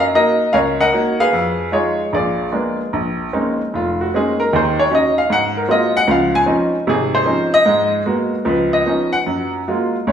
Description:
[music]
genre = solo jazz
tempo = 151 BPM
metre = 4/4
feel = swing 66% on 8ths, rubato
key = Bb minor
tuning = A4 = 440 Hz
[part]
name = clear baby grand piano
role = solo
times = 0.0-10.1 s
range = F1 to Ab5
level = -14 LUFS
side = equal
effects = none
[sound]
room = wet large studio reverb, RT60 1.4 s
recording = band playing live in one room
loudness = -14 LUFS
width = side -8 dB against mid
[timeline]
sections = 0.0-2.9 A section; 2.9-10.1 B section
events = grand piano solo 2.9-10.1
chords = 0.0 Gb6; 1.3 Fm7b5; 2.1 Bb7b9; 2.9 Bbm11; 4.5 Ebm7; 5.3 Ab13; 6.1 Dbmaj9; 7.7 Abm9; 8.5 Db9; 9.3 Gbmaj9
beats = 0.14 0.54 0.93 | 1.32 1.72 2.12 2.52 | 2.92 3.33 3.73 4.13 | 4.52 4.91 5.30 5.69 | 6.08 6.47 6.87 7.27 | 7.67 8.06 8.46 8.87 | 9.27 9.67 10.07

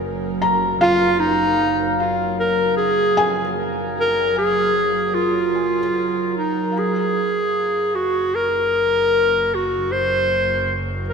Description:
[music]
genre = ambient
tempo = 76 BPM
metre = 4/4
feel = straight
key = Gb lydian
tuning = A4 = 440 Hz
[part]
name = bright studio double bass section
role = bass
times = 0.0-11.1 s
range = Gb1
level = -32 LUFS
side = right 1 dB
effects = none
[part]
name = bowed-like drone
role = drone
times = 0.0-6.8 s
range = Gb3 to Bb4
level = -25 LUFS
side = right 1 dB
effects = built-in reverb
[part]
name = felt-muted upright piano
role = arpeggios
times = 0.4-11.1 s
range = F5 to Bb5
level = -23 LUFS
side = equal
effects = ping-pong delay
[part]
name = clear clarinet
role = melody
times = 0.8-11.1 s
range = Eb4 to C5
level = -18 LUFS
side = equal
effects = ping-pong delay
[sound]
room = wet lush hall reverb, RT60 2.5 s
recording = none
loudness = -17 LUFS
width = side -6 dB against mid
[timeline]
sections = 0.0-6.7 A section; 6.7-11.1 B section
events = fade-out on double bass section 0.0-6.7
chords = 0.0 Db/Gb (rootless); 6.7 Gbmaj7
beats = | 0.41 1.20 1.99 2.77 | 3.56 4.35 5.14 5.93 | 6.72 7.51 8.30 9.09 | 9.88 10.67

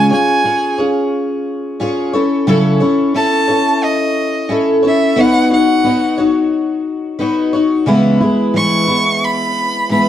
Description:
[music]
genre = pop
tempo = 89 BPM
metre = 4/4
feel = straight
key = unclear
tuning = A4 = 442 Hz
[part]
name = rich violin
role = melody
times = 0.0-10.1 s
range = D#5 to C#6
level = -15 LUFS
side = right 1 dB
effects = slapback echo
[part]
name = picked twelve-string acoustic guitar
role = accompaniment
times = 0.0-10.1 s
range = C#3 to C#5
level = -13 LUFS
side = left 1 dB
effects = none
[sound]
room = moderate small room reverb, RT60 0.5 s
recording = dark, warm production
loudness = -12 LUFS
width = side -11 dB against mid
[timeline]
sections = 0.0-10.1 A section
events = none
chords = 0.0 C#; 2.1 F#m7/C#; 5.2 Badd9; 7.9 C#m7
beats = 0.45 1.12 1.80 | 2.47 3.15 3.83 4.50 | 5.18 5.85 6.53 7.20 | 7.88 8.55 9.22 9.90

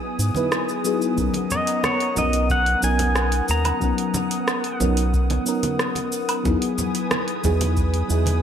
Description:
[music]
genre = sunset chillout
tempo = 91 BPM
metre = 4/4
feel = straight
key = B major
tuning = A4 = 440 Hz
[part]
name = mellow FM electric piano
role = accompaniment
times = 0.0-8.4 s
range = F#3 to B4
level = -24 LUFS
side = moving between left 6 dB and right 5 dB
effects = chorus, phaser, auto-pan, cassette tape, ping-pong delay
[part]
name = airy breathy pad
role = sustained chords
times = 0.0-8.4 s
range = B3 to D#6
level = -29 LUFS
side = right 1 dB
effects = chorus
[part]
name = round analog bass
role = bass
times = 0.2-8.4 s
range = B1 to G#2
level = -22 LUFS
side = equal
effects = none
[part]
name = smooth R&B drum kit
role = drums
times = 0.2-8.4 s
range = hi-hat, rim click, shaker, woodblock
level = -27 LUFS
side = right 1 dB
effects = overdrive, gated reverb
[part]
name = congas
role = percussion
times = 0.3-8.4 s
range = none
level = -32 LUFS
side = right 2 dB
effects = none
[part]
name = electronic kick drum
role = drums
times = 1.2-7.9 s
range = none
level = -26 LUFS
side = equal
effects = overdrive
[part]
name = pedal steel guitar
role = melody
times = 1.5-4.8 s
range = C#5 to A#5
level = -24 LUFS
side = equal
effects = ping-pong delay
[sound]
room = moderate plate reverb, RT60 2.3 s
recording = bright 1980s-style digital production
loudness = -19 LUFS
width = side -8 dB against mid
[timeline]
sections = 0.0-8.4 A section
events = none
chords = 0.0 Emaj7; 1.2 Bmaj7; 6.5 Emaj7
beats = 0.52 | 1.18 1.84 2.50 3.16 | 3.82 4.48 5.14 5.80 | 6.46 7.11 7.77

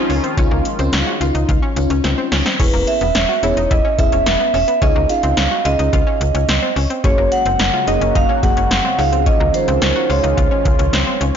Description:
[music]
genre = synth-pop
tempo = 108 BPM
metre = 4/4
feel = straight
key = Db major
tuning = A4 = 439 Hz
[part]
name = FM electric piano with soft pad layer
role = accompaniment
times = 0.0-10.8 s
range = Bb3 to Bb4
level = -24 LUFS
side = left 2 dB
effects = chorus, tremolo
[part]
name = sweeping resonant pad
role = sustained chords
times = 0.0-2.6, 7.0-11.4 s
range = Db3 to Gb4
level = -25 LUFS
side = left 1 dB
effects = chorus
[part]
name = analog pluck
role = arpeggios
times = 0.0-11.4 s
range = Bb3 to Gb4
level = -25 LUFS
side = left 3 dB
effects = chorus, tape echo
[part]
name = slap-like FM bass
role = bass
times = 0.1-11.3 s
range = E1 to Db2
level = -20 LUFS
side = equal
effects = tube saturation
[part]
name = electro analog drum machine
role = drums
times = 0.1-11.4 s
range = crash cymbal, hi-hat, kick drum, snare drum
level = -18 LUFS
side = left 1 dB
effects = none
[part]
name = vibraphone with medium hard mallets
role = melody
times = 2.6-11.2 s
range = B4 to Gb5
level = -18 LUFS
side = right 4 dB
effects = tape echo
[sound]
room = light reverb, digital ambience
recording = blown-out, overdriven recording, overdrive, nothing above 7.5 kHz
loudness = -13 LUFS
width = side -8 dB against mid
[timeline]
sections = 0.0-2.6 A section; 2.6-11.4 B section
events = drum fill 2.0-2.6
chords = 0.0 Dbadd9; 2.6 E6; 4.8 Dbadd9; 7.0 Gbadd9; 9.0 Dbadd9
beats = | 0.38 0.93 1.49 2.04 | 2.60 3.15 3.71 4.26 | 4.82 5.38 5.93 6.49 | 7.04 7.60 8.15 8.71 | 9.26 9.82 10.38 10.93

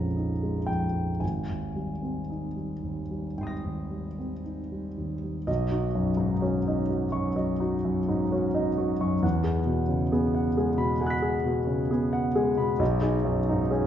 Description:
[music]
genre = classical, impressionist solo piano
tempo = 55-69 BPM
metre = 4/4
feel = rubato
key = Ab major, B major from 5.5 s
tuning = A4 = 438 Hz
[part]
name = warm concert grand piano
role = solo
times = 0.0-13.9 s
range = Ab1 to B6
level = -25 LUFS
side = equal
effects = none
[sound]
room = wet recital hall reverb, RT60 1.4 s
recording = heard from further back in the room, nothing above 7.9 kHz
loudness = -25 LUFS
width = side -10 dB against mid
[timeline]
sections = 0.0-5.5 A section; 5.5-13.9 B section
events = none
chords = 0.0 Bbm7; 1.2 Abmaj9; 5.5 Badd9; 9.2 Eadd9; 12.8 B69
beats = 0.18 | 1.22 2.29 3.37 4.43 | 5.48 6.43 7.38 8.32 | 9.24 10.13 11.01 11.91 | 12.80 13.71

